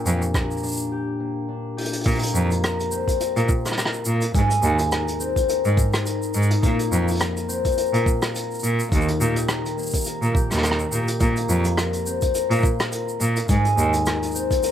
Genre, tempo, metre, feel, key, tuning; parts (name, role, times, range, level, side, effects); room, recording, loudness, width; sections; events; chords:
folktronica; 105 BPM; 4/4; swing 56% on 16ths; Bb major; A4 = 438 Hz
concert harp; arpeggios; 0.0-14.7 s; Bb2 to Bb4; -25 LUFS; left 3 dB; digital delay
rich cello; bass; 0.1-13.9 s; Eb2 to Bb2; -23 LUFS; right 1 dB
vintage brush drum kit; drums; 0.1-14.7 s; hi-hat, rim click, shaker; -28 LUFS; right 1 dB
electronic kick drum; drums; 0.3-14.6 s; -22 LUFS; right 1 dB
light reverb; -20 LUFS; side -10 dB against mid
0.0-2.1 A section; 2.1-14.7 B section
break 0.9-2.1; drum fill 1.8
0.0 Bb6; 2.1 Bbsus2; 4.3 Abadd9; 6.6 Bbsus2; 8.9 Eb; 11.2 Bbsus2; 13.5 Abadd9